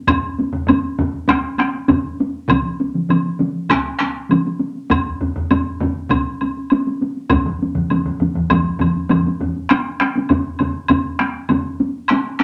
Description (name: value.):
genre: japanese traditional, taiko drum ensemble.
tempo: 100 BPM.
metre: 4/4.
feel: straight.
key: none.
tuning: none.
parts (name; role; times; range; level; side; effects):
taiko ensemble; percussion; 0.1-12.4 s; none; -21 LUFS; equal; none.
taiko ensemble; percussion; 0.1-11.6 s; none; -25 LUFS; equal; none.
taiko ensemble; percussion; 0.1-8.6 s; none; -26 LUFS; equal; none.
woodblock; percussion; 0.1-12.2 s; none; -25 LUFS; equal; none.
taiko ensemble; percussion; 2.5-12.4 s; none; -22 LUFS; equal; none.
room: wet club reverb, RT60 0.7 s.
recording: none.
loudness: -19 LUFS.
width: mono.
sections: 0.0-9.7 A section; 9.7-12.4 B section.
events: none.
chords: none.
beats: | 0.08 0.68 1.28 1.89 | 2.49 3.09 3.70 4.30 | 4.90 5.50 6.10 6.70 | 7.30 7.90 8.50 9.10 | 9.70 10.30 10.89 11.49 | 12.09.